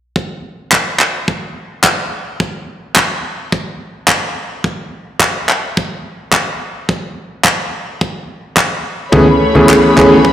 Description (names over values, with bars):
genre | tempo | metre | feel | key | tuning
nu-disco, nu disco | 107 BPM | 4/4 | straight | A major | A4 = 440 Hz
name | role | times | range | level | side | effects
kick drum | drums | 0.2-10.3 s | none | -18 LUFS | equal | high-pass filter on kick, high-pass filter on snare, high-pass filter on room
handclaps | drums | 0.7-10.1 s | none | -14 LUFS | equal | none
clear electric grand piano | accompaniment | 9.1-10.2 s | E3 to G#4 | -7 LUFS | equal | sidechain pumping, digital delay
warm studio string section | sustained chords | 9.1-10.3 s | A3 to B5 | -13 LUFS | right 1 dB | sidechain pumping
congas | percussion | 9.1-10.1 s | none | -15 LUFS | equal | none
room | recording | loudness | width
moderate plate reverb, RT60 2.4 s | played on a big sound system in a bare room, large studio reverb | -12 LUFS | side -11 dB against mid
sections
0.2-10.3 A section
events
none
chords
0.2 N.C.; 9.1 Amaj9